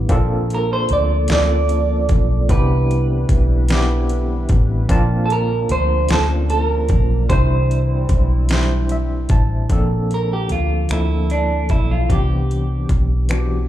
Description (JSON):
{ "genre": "slow six-eight R&B", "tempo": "50 BPM (dotted quarters)", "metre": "6/8", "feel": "straight", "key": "unclear", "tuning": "A4 = 436 Hz", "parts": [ { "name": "mellow tine electric piano", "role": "accompaniment", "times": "0.0-13.7 s", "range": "E3 to A5", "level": "-24 LUFS", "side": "left 1 dB", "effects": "medium tremolo, slapback echo" }, { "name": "hollow soft pad", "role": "sustained chords", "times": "0.0-9.7 s", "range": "D3 to B4", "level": "-30 LUFS", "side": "right 3 dB", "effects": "chorus" }, { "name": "vintage muted fingered electric bass", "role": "bass", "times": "0.0-13.7 s", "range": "A1 to D2", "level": "-18 LUFS", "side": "equal", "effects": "none" }, { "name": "smooth R&B drum kit", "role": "drums", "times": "0.1-13.5 s", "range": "finger snaps, hi-hat, kick drum, snare drum", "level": "-19 LUFS", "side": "equal", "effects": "none" }, { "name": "clean electric guitar", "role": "melody", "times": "0.5-12.9 s", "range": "D4 to D5", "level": "-22 LUFS", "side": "right 3 dB", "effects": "spring reverb, slapback echo" } ], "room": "little or no reverb", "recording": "live gig heard through the venue's PA, club reverb", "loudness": "-15 LUFS", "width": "side -12 dB against mid", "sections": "0.0-9.7 A section; 9.7-13.7 B section", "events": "tine electric piano fill 8.5-9.7; clean electric guitar solo 9.7-13.7", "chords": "0.1 Bbmaj9; 2.5 Cmaj7; 4.9 Bbmaj9; 7.3 Cmaj7; 9.7 Bbmaj9; 12.1 Cmaj7" }